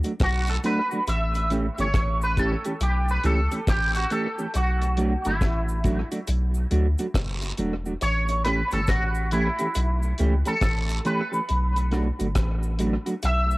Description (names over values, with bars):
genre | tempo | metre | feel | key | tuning
roots reggae | 69 BPM | 4/4 | swing 63% on 16ths | B minor | A4 = 444 Hz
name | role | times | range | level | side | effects
mellow electric guitar | accompaniment | 0.0-13.1 s | E3 to G4 | -29 LUFS | right 2 dB | lush chorus, cassette tape, tape echo
deep reggae drum kit | drums | 0.0-13.5 s | hi-hat, kick drum, rim click | -28 LUFS | equal | cassette tape, analog delay
cabasa and guiro | percussion | 0.0-13.6 s | none | -40 LUFS | right 2 dB | none
electric guitar with an envelope filter | melody | 0.2-13.6 s | E4 to E5 | -27 LUFS | equal | ensemble chorus, tape echo
soft dub sub bass | bass | 0.2-13.6 s | E1 to D2 | -24 LUFS | equal | none
room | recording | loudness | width
light reverb, small room ambience | home recording on cassette | -22 LUFS | side -20 dB against mid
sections
0.0-13.6 A section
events
clean electric guitar solo 0.0-13.6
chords
0.0 Bm7; 1.1 A7; 4.5 Bm7; 8.0 A7; 11.5 Bm7